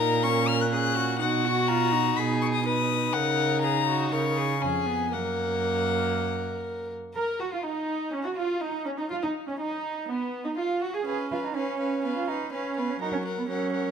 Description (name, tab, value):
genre	quick classical-period movement for string quartet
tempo	123 BPM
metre	4/4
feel	straight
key	F# major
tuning	A4 = 439 Hz
part	rich violin	melody	0.0-13.9 s	B3 to F#6	-30 LUFS	left 10 dB	none
part	rich violin	second line	0.0-13.9 s	B3 to B4	-31 LUFS	left 2 dB	none
part	warm viola	accompaniment	0.0-13.9 s	F#3 to A#4	-32 LUFS	right 3 dB	none
part	warm cello	bass	0.0-13.9 s	E#2 to A#4	-30 LUFS	right 5 dB	none
room	light reverb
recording	none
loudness	-25 LUFS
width	side -7 dB against mid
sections	0.0-7.2 A section; 7.2-13.9 B section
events	none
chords	0.0 F#/A#; 1.2 B; 2.2 G#m/B; 3.1 F#/C#; 4.1 C#7; 5.1 F#; 9.1 G#m (rootless); 11.1 C#7; 13.0 F#